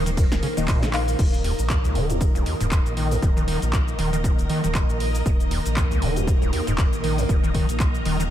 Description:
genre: acid house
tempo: 118 BPM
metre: 4/4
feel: swing 57% on 16ths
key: unclear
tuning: A4 = 441 Hz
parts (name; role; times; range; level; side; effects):
- string machine, full ensemble; sustained chords; 0.0-8.3 s; Eb3 to Eb5; -28 LUFS; right 1 dB; ensemble chorus, sidechain pumping
- overdriven acid bass; riff; 0.0-8.2 s; Db2 to Eb3; -27 LUFS; equal; distortion, wide subtle chorus, vintage 12-bit sampler grit, sidechain pumping, analog delay
- round analog bass; bass; 0.0-8.3 s; Eb1 to Bb1; -26 LUFS; equal; sidechain pumping
- punchy analog drum machine; drums; 0.1-8.3 s; crash cymbal, handclaps, hi-hat, ride cymbal, shaker, snare drum; -31 LUFS; equal; none
- electronic kick drum; drums; 0.2-7.9 s; none; -22 LUFS; equal; none
- deep mellow chord stab; stabs; 0.6-1.0 s; Bb3 to F5; -31 LUFS; left 5 dB; chorus, cassette tape, analog delay
room: light reverb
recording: none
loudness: -19 LUFS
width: side -11 dB against mid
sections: 0.0-1.2 A section; 1.2-8.3 B section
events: drop 0.0-1.2; drum fill 0.9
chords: 0.0 Eb5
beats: 0.17 0.68 | 1.19 1.70 2.21 2.71 | 3.22 3.73 4.24 4.75 | 5.26 5.77 6.27 6.78 | 7.29 7.80

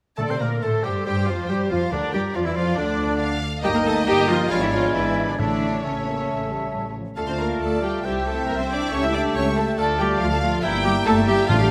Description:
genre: quick classical-period movement for symphony orchestra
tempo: 138 BPM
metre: 4/4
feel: rubato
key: D minor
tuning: A4 = 440 Hz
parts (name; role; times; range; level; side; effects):
- rich studio violin section; melody; 0.2-11.7 s; Bb4 to G5; -34 LUFS; equal; none
- bright clarinet; second line; 0.2-11.7 s; D4 to E5; -34 LUFS; equal; none
- clear oboe; second line; 0.2-11.7 s; D4 to G#5; -34 LUFS; equal; none
- mellow hollow concert flute; second line; 0.2-11.7 s; D4 to B5; -34 LUFS; equal; none
- warm studio violin section; second line; 0.2-11.7 s; C#5 to E6; -36 LUFS; equal; none
- mellow bassoon; accompaniment; 0.2-11.7 s; D3 to C4; -34 LUFS; equal; none
- rich chamber viola section; accompaniment; 0.2-11.7 s; C#4 to E5; -28 LUFS; equal; none
- mellow French horn section; sustained chords; 0.2-11.7 s; D3 to G4; -32 LUFS; equal; none
- rich symphonic double bass section; bass; 0.2-11.7 s; G1 to C3; -30 LUFS; equal; none
- warm studio cello section; bass; 0.2-11.6 s; C#3 to E4; -31 LUFS; equal; none
- timpani; percussion; 0.2-0.8, 5.4-6.0, 11.5-11.7 s; A2 to D3; -29 LUFS; equal; none
room: moderate concert hall reverb, RT60 2.0 s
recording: none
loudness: -22 LUFS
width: mono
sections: 0.2-11.7 A section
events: none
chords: 0.2 Dm; 1.9 Bb; 3.6 Eb/G; 4.5 G#dim7; 5.4 A; 7.2 Dm; 8.0 C; 8.9 A7/C#; 9.8 Dm; 10.6 Edim/G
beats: | 0.18 0.62 1.06 1.50 | 1.92 2.35 2.77 3.20 | 3.63 4.06 4.50 4.94 | 5.39 5.83 6.28 6.73 | 7.17 7.61 8.05 8.48 | 8.92 9.35 9.78 10.21 | 10.63 11.06 11.49

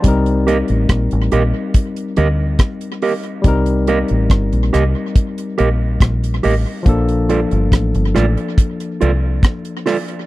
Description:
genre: lovers rock reggae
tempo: 70 BPM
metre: 4/4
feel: straight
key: unclear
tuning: A4 = 441 Hz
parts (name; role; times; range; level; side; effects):
- barky tine electric piano; accompaniment; 0.0-10.3 s; F3 to Bb4; -21 LUFS; left 3 dB; overdrive
- deep dub fingered electric bass; bass; 0.0-9.4 s; G1 to D2; -16 LUFS; equal; none
- deep reggae drum kit; drums; 0.0-10.3 s; hi-hat, kick drum, rim click; -14 LUFS; equal; none
- mellow electric guitar; stabs; 0.5-10.0 s; F4 to Eb5; -21 LUFS; right 5 dB; spring reverb
room: little or no reverb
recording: dry, close 1970s-style studio recording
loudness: -14 LUFS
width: side -17 dB against mid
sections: 0.0-10.3 A section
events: none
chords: 0.0 Cm7; 6.9 Bbmaj7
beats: | 0.04 0.89 1.74 2.60 | 3.45 4.30 5.16 6.01 | 6.87 7.72 8.57 9.43

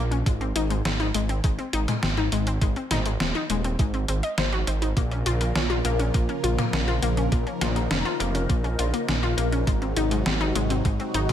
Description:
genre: synthwave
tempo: 102 BPM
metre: 4/4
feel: straight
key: unclear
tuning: A4 = 442 Hz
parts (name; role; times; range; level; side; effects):
- analog pluck; arpeggios; 0.0-11.3 s; Ab3 to Eb5; -28 LUFS; left 4 dB; chorus, ping-pong delay
- dark detuned saw bass; bass; 0.0-11.3 s; Eb1 to Bb1; -26 LUFS; right 1 dB; none
- gated 80s digital drum machine; drums; 0.1-11.3 s; hi-hat, snare drum, toms; -29 LUFS; equal; gated reverb, gated reverb snare, overdrive
- electronic kick drum; drums; 0.3-11.0 s; none; -24 LUFS; right 1 dB; overdrive
- phased analog pad; sustained chords; 5.0-11.3 s; C3 to Bb4; -29 LUFS; equal; phaser, chorus, sidechain pumping
room: light reverb, digital ambience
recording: none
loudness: -22 LUFS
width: side -10 dB against mid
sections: 0.0-11.3 A section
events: none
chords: 0.3 Ab; 5.0 Bbm; 9.7 Ab7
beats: | 0.26 0.85 1.44 2.03 | 2.62 3.20 3.79 4.38 | 4.97 5.56 6.14 6.73 | 7.32 7.91 8.50 9.09 | 9.67 10.26 10.85

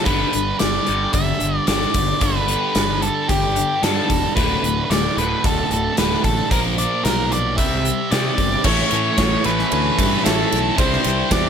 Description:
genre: classic rock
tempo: 112 BPM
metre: 4/4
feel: straight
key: unclear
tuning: A4 = 441 Hz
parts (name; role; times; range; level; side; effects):
- octave-fuzz lead guitar; melody; 0.0-11.5 s; G4 to E5; -22 LUFS; left 1 dB; distortion
- biting overdriven guitar; riff; 0.0-11.5 s; D2 to C5; -26 LUFS; left 13 dB; phaser
- tight distorted guitar; riff; 0.0-11.5 s; D2 to C4; -24 LUFS; right 13 dB; distortion
- fuzz fingered electric bass; bass; 0.1-11.5 s; D1 to C3; -24 LUFS; equal; overdrive
- gated 80s drum kit; drums; 0.1-11.4 s; crash cymbal, hi-hat, kick drum, ride cymbal, snare drum; -21 LUFS; equal; none
- tonewheel organ; sustained chords; 8.3-11.5 s; A3 to D5; -33 LUFS; right 1 dB; none
- clear baby grand piano; accompaniment; 8.6-11.5 s; C#4 to C#5; -29 LUFS; right 4 dB; none
- distorted electric guitar; riff; 8.6-11.5 s; A2 to C4; -25 LUFS; left 1 dB; distortion
room: studio ambience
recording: none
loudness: -16 LUFS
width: side -7 dB against mid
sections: 0.0-8.7 A section; 8.7-11.5 B section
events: none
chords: 0.1 G; 4.4 D5; 6.5 Bb5; 7.6 C; 8.7 A; 10.8 Cadd9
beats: | 0.07 0.61 1.14 1.68 | 2.22 2.75 3.29 3.83 | 4.37 4.90 5.44 5.97 | 6.51 7.05 7.58 8.12 | 8.65 9.18 9.72 10.25 | 10.78 11.31

